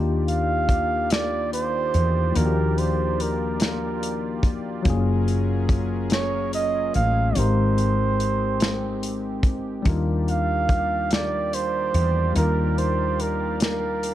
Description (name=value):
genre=slow six-eight R&B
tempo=48 BPM (dotted quarters)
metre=6/8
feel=straight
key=Eb major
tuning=A4 = 440 Hz
part: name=tine electric piano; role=accompaniment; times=0.0-14.1 s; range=F3 to Bb4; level=-27 LUFS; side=left 5 dB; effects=none
part: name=warm analog pad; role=sustained chords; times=0.0-14.1 s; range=Eb3 to F5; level=-34 LUFS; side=right 2 dB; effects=chorus
part: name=woody fretless electric bass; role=bass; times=0.0-14.1 s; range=Gb1 to Fb2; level=-24 LUFS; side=equal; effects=none
part: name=mellow flugelhorn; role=melody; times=0.3-14.1 s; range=Bb4 to F5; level=-25 LUFS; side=right 5 dB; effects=none
part: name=warm soul drum kit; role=drums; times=0.3-14.1 s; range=hi-hat, kick drum, snare drum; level=-24 LUFS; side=equal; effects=none
room=studio ambience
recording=dark, warm production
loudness=-20 LUFS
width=side -12 dB against mid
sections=0.0-14.1 A section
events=none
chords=0.0 Ebmaj9; 4.9 Gbmaj9; 7.4 Abmaj9; 9.9 Ebmaj9